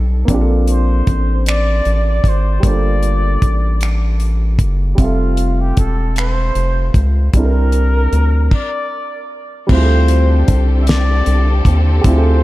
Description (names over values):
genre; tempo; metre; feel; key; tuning
slow six-eight R&B; 51 BPM (dotted quarters); 6/8; straight; unclear; A4 = 440 Hz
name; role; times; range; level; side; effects
warm grand piano; accompaniment; 0.0-12.4 s; G3 to E5; -21 LUFS; right 2 dB; none
rubbery square bass; bass; 0.0-12.4 s; E1 to Eb2; -14 LUFS; equal; none
damped 70s drum kit; drums; 0.3-12.2 s; crash cymbal, finger snaps, hi-hat, kick drum, snare drum; -16 LUFS; equal; none
warm flugelhorn; melody; 0.7-12.4 s; F4 to E5; -23 LUFS; equal; none
warm studio string section; sustained chords; 9.7-12.4 s; D3 to A4; -23 LUFS; left 1 dB; none
room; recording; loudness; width
light reverb, small room ambience; none; -12 LUFS; side -17 dB against mid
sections
0.0-9.7 A section; 9.7-12.4 B section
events
stop 8.5-9.7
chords
0.3 Bbmaj7; 2.6 Gm9; 5.0 Fmaj9; 7.3 C9; 9.7 Dm11